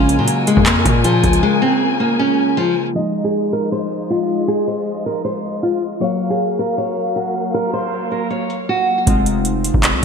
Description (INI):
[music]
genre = hip hop, trap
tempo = 157 BPM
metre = 4/4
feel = half-time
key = F phrygian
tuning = A4 = 440 Hz
[part]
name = nylon-string guitar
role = melody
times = 0.0-8.9 s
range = F3 to Eb5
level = -18 LUFS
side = equal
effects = low-pass filter, digital delay
[part]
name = warbly lo-fi synth keys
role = accompaniment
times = 0.0-10.0 s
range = Db3 to F5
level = -22 LUFS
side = equal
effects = chorus, phaser, low-pass filter
[part]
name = muted symphonic string section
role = sustained chords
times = 0.0-9.0 s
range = Db3 to Ab5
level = -24 LUFS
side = left 3 dB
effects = none
[part]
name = distorted 808-style bass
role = bass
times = 0.0-1.4, 9.1-10.0 s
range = F1 to Bb2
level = -19 LUFS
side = equal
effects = distortion
[part]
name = booming analog drum machine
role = drums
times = 0.1-10.0 s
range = handclaps, hi-hat, kick drum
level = -16 LUFS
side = equal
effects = gated reverb
[sound]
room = moderate lush hall reverb, RT60 1.8 s, digital ambience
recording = bright 1980s-style digital production, low-pass filter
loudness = -15 LUFS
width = side -6 dB against mid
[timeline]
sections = 0.0-3.0 A section; 3.0-9.1 B section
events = break 1.4-3.0; filter sweep 3.0-9.1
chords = 0.0 Bbm7; 3.0 Fm7; 6.0 Gbmaj7; 9.1 Fm7